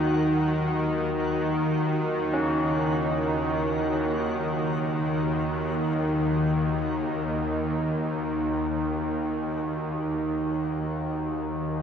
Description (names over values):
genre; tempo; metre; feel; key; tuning
dark ambient drone; free time; none; none; Eb minor; A4 = 440 Hz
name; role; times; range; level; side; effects
deep dark ambient pad; sustained chords; 0.0-11.8 s; Eb4 to F5; -34 LUFS; right 1 dB; none
bowed-like drone; drone; 0.0-11.8 s; Eb2 to Eb3; -25 LUFS; equal; built-in reverb
backwards swelling texture; texture; 0.0-11.8 s; Gb4; -39 LUFS; right 1 dB; built-in reverb, shimmer reverb
carillon bells; arpeggios; 2.3-8.7 s; Db4; -34 LUFS; equal; diffuse ambient delay, shimmer reverb
room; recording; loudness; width
wet cathedral reverb, RT60 5.1 s; worn, warbling old tape, cassette tape, warbly pitch drift; -24 LUFS; side -7 dB against mid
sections
0.0-11.8 A section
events
fade-out on synth texture 0.0-11.8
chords
0.0 Ebmadd9